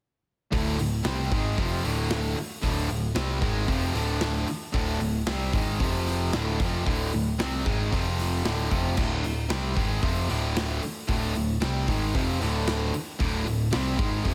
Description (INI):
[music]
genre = hard rock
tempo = 114 BPM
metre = 4/4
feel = straight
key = D minor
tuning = A4 = 440 Hz
[part]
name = distorted electric guitar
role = riff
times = 0.5-14.3 s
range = D2 to C4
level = -35 LUFS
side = equal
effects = overdrive
[part]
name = distorted electric guitar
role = riff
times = 0.5-14.3 s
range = D2 to C4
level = -36 LUFS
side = equal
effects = overdrive
[part]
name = high-gain distorted guitar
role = riff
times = 0.5-14.3 s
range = D2 to C4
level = -34 LUFS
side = equal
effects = distortion
[part]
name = picked electric bass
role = bass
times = 0.5-14.3 s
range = D1 to C2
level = -32 LUFS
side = equal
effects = none
[part]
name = big rock drum kit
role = drums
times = 0.5-14.3 s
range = crash cymbal, hi-hat, kick drum, snare drum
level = -32 LUFS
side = equal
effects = none
[sound]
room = moderate lush hall reverb, RT60 2.4 s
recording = big arena sound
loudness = -27 LUFS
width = mono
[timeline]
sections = 0.5-14.3 A section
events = none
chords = 0.5 Dm; 5.8 F5; 6.3 Dm; 7.9 F5; 8.4 Dm